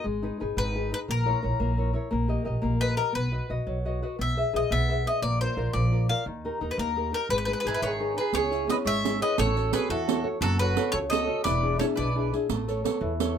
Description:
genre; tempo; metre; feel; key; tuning
italian folk, Italian serenade; 116 BPM (dotted quarters); 6/8; straight; G# minor, C# minor from 8.3 s; A4 = 440 Hz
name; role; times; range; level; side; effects
bowl-back mandolin; melody; 0.0-12.3 s; G#4 to E#5; -29 LUFS; left 3 dB; none
nylon-string guitar; accompaniment; 0.0-13.4 s; B2 to E5; -30 LUFS; left 2 dB; none
upright bass; bass; 0.1-13.4 s; E1 to E2; -29 LUFS; right 1 dB; none
mandolin; second line; 7.7-12.3 s; E4 to C#5; -31 LUFS; right 6 dB; none
riq; percussion; 8.3-13.4 s; none; -31 LUFS; right 11 dB; none
room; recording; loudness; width
light reverb; minimal, uncompressed stereo recording; -24 LUFS; side -8 dB against mid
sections
0.1-8.3 A section; 8.3-13.4 B section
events
nylon-string guitar fill 3.7-4.2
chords
0.1 G#m; 1.1 A#dim; 2.1 D#/A#; 3.1 B; 4.2 E/B; 5.2 A#; 6.3 D#; 7.3 G#m; 8.3 C#m; 9.4 A6; 10.4 F#m; 11.5 E7; 12.5 Aadd9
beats
| 0.06 0.58 | 1.09 1.60 | 2.12 2.63 | 3.14 3.66 | 4.18 4.70 | 5.22 5.74 | 6.25 6.77 | 7.29 7.81 | 8.34 8.86 | 9.38 9.90 | 10.42 10.93 | 11.45 11.97 | 12.49 13.02

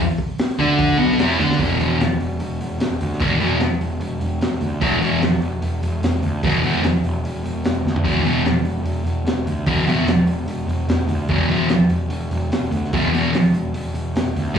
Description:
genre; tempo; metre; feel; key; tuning
garage rock duo or trio; 148 BPM; 4/4; straight; unclear; A4 = 440 Hz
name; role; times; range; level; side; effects
crunchy breakbeat drum kit; drums; 0.2-14.6 s; crash cymbal, hi-hat, kick drum, snare drum, toms; -25 LUFS; equal; slapback echo
thick fuzz guitar; riff; 0.6-14.6 s; E2 to D4; -17 LUFS; equal; distortion, slapback echo
fuzz picked electric bass; bass; 0.6-14.6 s; E1 to D2; -22 LUFS; equal; overdrive, tube saturation
room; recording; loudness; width
light reverb; live gig heard through the venue's PA, club reverb, small room ambience; -17 LUFS; side -8 dB against mid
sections
0.0-1.6 A section; 1.6-14.6 B section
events
drum fill 1.4, 7.8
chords
0.0 E5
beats
0.39 0.79 1.20 | 1.60 2.00 2.40 2.80 | 3.20 3.61 4.01 4.41 | 4.81 5.22 5.62 6.02 | 6.43 6.83 7.23 7.64 | 8.04 8.45 8.86 9.26 | 9.67 10.08 10.48 10.89 | 11.30 11.71 12.11 12.52 | 12.93 13.34 13.74 14.15 | 14.56

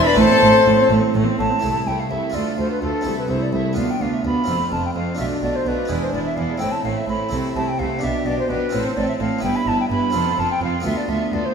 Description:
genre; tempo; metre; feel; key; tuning
classical, baroque-style concerto movement with solo episodes; 84 BPM (dotted quarters); 6/8; straight; A minor; A4 = 440 Hz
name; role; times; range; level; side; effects
clear chamber violin section; melody; 0.0-11.5 s; E4 to B5; -30 LUFS; equal; none
silver concert flute; melody; 0.0-11.5 s; A4 to B5; -22 LUFS; left 1 dB; none
rich chamber violin section; second line; 0.0-11.5 s; C4 to B4; -27 LUFS; left 5 dB; none
harpsichord; accompaniment; 0.0-11.5 s; C2 to B4; -25 LUFS; right 1 dB; none
rich chamber viola section; accompaniment; 0.0-11.5 s; G#3 to D4; -27 LUFS; right 3 dB; none
clear chamber double bass section; bass; 0.2-11.4 s; E1 to D2; -28 LUFS; right 2 dB; none
warm chamber cello section; bass; 0.2-11.4 s; C2 to C3; -25 LUFS; right 3 dB; none
room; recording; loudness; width
wet scoring stage reverb, RT60 1.6 s; none; -17 LUFS; side -6 dB against mid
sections
0.0-1.6 A section; 1.6-11.5 B section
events
none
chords
0.2 Am; 1.6 Am/C; 2.3 Dm; 3.1 Am/C; 3.8 Bdim/D; 4.5 F; 5.2 Bm7b5; 5.9 E7; 6.6 Am; 7.3 Am/C; 8.0 G/B; 8.7 F/A; 9.4 Em/G; 10.1 F; 10.9 Bm7b5/D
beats
| 0.18 0.91 | 1.64 2.35 | 3.06 3.77 | 4.48 5.19 | 5.90 6.61 | 7.32 8.02 | 8.72 9.43 | 10.14 10.86

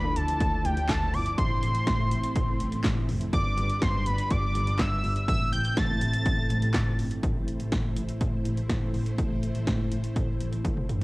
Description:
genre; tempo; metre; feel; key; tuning
synth-pop; 123 BPM; 4/4; straight; A minor; A4 = 440 Hz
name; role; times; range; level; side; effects
fat analog lead; melody; 0.0-7.0 s; G5 to A6; -30 LUFS; equal; cassette tape
string machine, cellos; sustained chords; 0.0-11.0 s; F3 to C5; -35 LUFS; equal; ensemble chorus, cassette tape
warm double bass; bass; 0.0-11.0 s; F1 to D3; -29 LUFS; equal; none
punchy analog drum machine; drums; 0.2-11.0 s; handclaps, hi-hat, kick drum, snare drum, toms; -29 LUFS; equal; overdrive, cassette tape
room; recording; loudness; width
little or no reverb; home recording on cassette; -24 LUFS; side -22 dB against mid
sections
0.0-7.2 A section; 7.2-11.0 B section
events
drum fill 10.6-11.0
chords
0.0 Dmadd9; 1.4 Am; 3.3 G; 5.3 Am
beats
0.40 0.89 | 1.38 1.87 2.35 2.84 | 3.33 3.82 4.31 4.79 | 5.28 5.77 6.26 6.75 | 7.23 7.72 8.21 8.70 | 9.18 9.67 10.16 10.65

